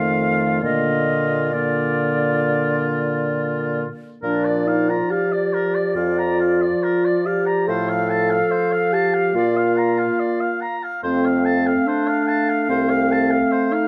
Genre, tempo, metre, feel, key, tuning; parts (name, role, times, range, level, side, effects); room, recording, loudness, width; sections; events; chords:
classical, slow romantic movement for wind quintet; 65-73 BPM; 4/4; rubato; Bb major; A4 = 441 Hz
silver concert flute; melody; 0.0-13.9 s; D5 to F5; -28 LUFS; equal
warm oboe; second line; 0.0-13.9 s; F4 to Bb5; -28 LUFS; equal
mellow French horn; accompaniment; 0.0-13.9 s; D3 to Bb3; -28 LUFS; equal
warm clarinet; accompaniment; 0.0-13.9 s; A3 to A4; -24 LUFS; equal
warm bassoon; bass; 0.0-13.4 s; C2 to Bb2; -27 LUFS; equal
moderate recital hall reverb, RT60 1.3 s; close, detailed microphones; -20 LUFS; mono
0.0-4.2 A section; 4.2-13.9 A section
0.0 F7; 0.6 Bb; 7.7 F/A; 9.4 Bb; 11.0 F